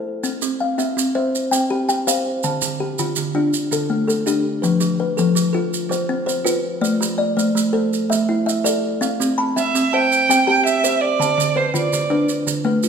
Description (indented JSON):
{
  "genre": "southern african traditional, mbira-style interlocking cycle",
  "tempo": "109 BPM (dotted quarters)",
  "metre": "12/8",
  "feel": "straight",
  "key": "C major",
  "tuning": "A4 = 440 Hz",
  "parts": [
    { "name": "kalimba", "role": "arpeggios", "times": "0.0-12.9 s", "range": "D3 to B5", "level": "-20 LUFS", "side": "left 4 dB", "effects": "none" },
    { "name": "maracas", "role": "percussion", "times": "0.2-12.9 s", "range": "none", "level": "-26 LUFS", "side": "right 7 dB", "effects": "none" },
    { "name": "kalimba", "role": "arpeggios", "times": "0.4-12.9 s", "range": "D3 to A5", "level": "-23 LUFS", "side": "right 5 dB", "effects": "none" },
    { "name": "rich violin", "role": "melody", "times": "9.6-12.3 s", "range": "C5 to G5", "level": "-18 LUFS", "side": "right 4 dB", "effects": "none" }
  ],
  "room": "wet recital hall reverb, RT60 1.7 s",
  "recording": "minimal, uncompressed stereo recording",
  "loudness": "-17 LUFS",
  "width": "side -6 dB against mid",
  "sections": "0.2-9.0 A section; 9.0-12.9 B section",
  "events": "none",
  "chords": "0.2 C; 2.4 Dm; 4.6 F; 6.8 Am; 9.0 C; 11.2 Dm",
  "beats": "| 0.23 0.78 1.33 1.88 | 2.43 2.98 3.53 4.08 | 4.63 5.18 5.73 6.28 | 6.83 7.38 7.92 8.47 | 9.02 9.56 10.11 10.66 | 11.20 11.75 12.30 12.84"
}